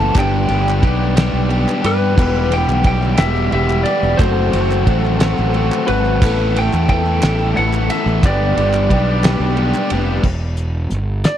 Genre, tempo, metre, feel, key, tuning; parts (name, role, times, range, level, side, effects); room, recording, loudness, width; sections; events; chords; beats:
indie rock; 60 BPM (dotted quarters); 6/8; straight; E minor; A4 = 440 Hz
lightly driven lead guitar; melody; 0.0-11.4 s; B4 to A5; -20 LUFS; left 1 dB
biting overdriven guitar; riff; 0.0-10.2 s; E2 to A4; -19 LUFS; left 1 dB; spring reverb
fuzz fingered electric bass; bass; 0.0-11.2 s; E1 to G2; -18 LUFS; equal; overdrive
group handclap; percussion; 0.0-9.9 s; -32 LUFS; right 3 dB
cloth-damped thuddy drum kit; drums; 0.1-11.4 s; crash cymbal, hi-hat, kick drum, ride cymbal, snare drum; -18 LUFS; equal
tonewheel organ; sustained chords; 2.2-10.2 s; G4 to B5; -30 LUFS; right 1 dB; slow rotary speaker, chorus vibrato
little or no reverb; dry, close 1970s-style studio recording; -13 LUFS; side -10 dB against mid
0.0-10.2 A section; 10.2-11.4 B section
0.2 G; 2.2 Em; 4.2 F#dim; 6.2 Asus2; 8.2 G; 10.2 Em
| 0.16 1.17 | 2.18 3.19 | 4.20 5.20 | 6.21 7.22 | 8.23 9.24 | 10.25 11.26